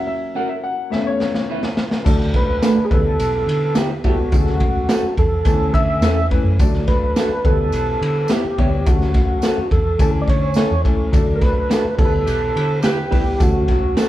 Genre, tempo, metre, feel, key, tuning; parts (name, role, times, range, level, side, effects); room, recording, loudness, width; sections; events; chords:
uptempo 1960s-style soul; 106 BPM; 4/4; straight; D major; A4 = 440 Hz
clear upright piano; accompaniment; 0.0-14.1 s; E3 to F#5; -24 LUFS; left 3 dB
electric guitar at the edge of break-up; stabs; 0.4-14.1 s; A3 to B4; -23 LUFS; right 2 dB
raw garage drum kit; drums; 0.9-14.1 s; crash cymbal, hi-hat, kick drum, ride cymbal, snare drum; -19 LUFS; equal
vintage muted fingered electric bass; bass; 2.1-13.9 s; B1 to D3; -22 LUFS; equal
tambourine; percussion; 2.1-14.1 s; -39 LUFS; right 3 dB
mellow tonewheel organ; melody; 2.4-14.1 s; F#4 to E5; -22 LUFS; right 1 dB; overdrive, chorus vibrato, slow rotary speaker
bright saxophone section; second line; 12.3-13.2 s; E4 to B4; -29 LUFS; right 2 dB
moderate large studio reverb, RT60 1.3 s; band playing live in one room, cassette tape; -15 LUFS; side -14 dB against mid
0.0-2.1 A section; 2.1-14.1 B section
break 0.0-2.1; upright piano solo 0.0-2.1; drum fill 0.9-2.1
0.0 F#; 0.9 Aadd9; 2.1 D; 2.9 Em; 4.3 F#m; 5.5 A/D; 6.6 D; 7.4 Em; 8.9 F#m; 10.0 A/D; 11.1 D; 12.0 Em; 13.4 F#m